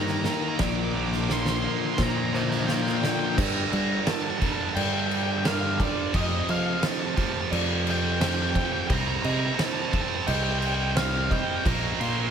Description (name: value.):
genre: post-rock.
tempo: 87 BPM.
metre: 4/4.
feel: straight.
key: G minor.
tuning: A4 = 441 Hz.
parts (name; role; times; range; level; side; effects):
octave-fuzz lead guitar; melody; 0.0-12.3 s; D5 to D6; -31 LUFS; left 1 dB; distortion, analog delay.
felt-muted upright piano; arpeggios; 0.0-12.3 s; Bb4 to D6; -38 LUFS; right 5 dB; analog delay.
twangy electric guitar; arpeggios; 0.0-3.4 s; Bb2 to Eb4; -37 LUFS; left 5 dB; none.
overdriven electric guitar; riff; 0.0-12.3 s; F2 to Eb4; -30 LUFS; right 10 dB; none.
sludgy distorted guitar; riff; 0.0-3.4 s; Bb2 to Eb4; -30 LUFS; left 12 dB; overdrive.
fuzz fingered electric bass; bass; 0.0-12.3 s; Bb1 to G3; -29 LUFS; equal; overdrive.
oversized low-tuned drum kit; drums; 0.1-12.2 s; crash cymbal, kick drum, snare drum; -28 LUFS; equal; none.
room: light reverb, small room ambience.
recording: none.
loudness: -23 LUFS.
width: side -7 dB against mid.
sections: 0.0-3.4 A section; 3.4-12.3 B section.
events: build-up 0.0-3.4.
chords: 0.0 Eb/G; 0.6 Bb; 3.4 Gm; 6.1 F7; 8.9 Cm7; 11.7 Bbsus2.